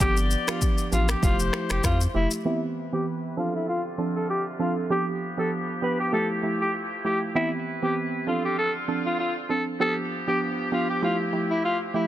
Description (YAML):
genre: afrobeats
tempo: 98 BPM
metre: 4/4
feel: swing 55% on 16ths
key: C major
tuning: A4 = 438 Hz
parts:
  - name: growling alto saxophone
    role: melody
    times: 0.0-12.1 s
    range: E4 to B4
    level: -28 LUFS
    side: left 1 dB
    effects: low-pass filter, tape echo
  - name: warm horn section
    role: second line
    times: 0.0-2.1 s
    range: A3 to D5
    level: -33 LUFS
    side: left 6 dB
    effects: none
  - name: soft round pluck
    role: accompaniment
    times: 0.0-12.1 s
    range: E3 to A4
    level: -28 LUFS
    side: right 3 dB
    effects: chorus, low-pass filter
  - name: warm sub bass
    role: bass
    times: 0.0-2.3 s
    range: F1 to F2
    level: -25 LUFS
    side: equal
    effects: none
  - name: deep house drum kit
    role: drums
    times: 0.0-2.4 s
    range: finger snaps, kick drum, rim click, shaker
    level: -25 LUFS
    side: equal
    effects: soft clipping on snare
  - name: clear woodwind section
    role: sustained chords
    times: 2.5-12.1 s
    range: C3 to B4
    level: -34 LUFS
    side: left 1 dB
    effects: low-pass filter
room: small room ambience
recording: dense, heavily limited modern master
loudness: -23 LUFS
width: side -12 dB against mid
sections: 0.0-2.5 A section; 2.5-12.1 B section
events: filter sweep 2.5-12.1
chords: 0.0 G7; 1.2 Fmaj9; 2.5 Cmaj7; 3.4 Dm7; 4.9 G7; 6.1 Fmaj9; 7.3 Cmaj7; 8.3 Dm7; 9.8 G7; 11.0 Fmaj9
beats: | 0.00 0.61 1.23 1.84 | 2.45 3.06 3.68 4.29 | 4.90 5.51 6.12 6.74 | 7.35 7.96 8.57 9.19 | 9.80 10.41 11.02 11.63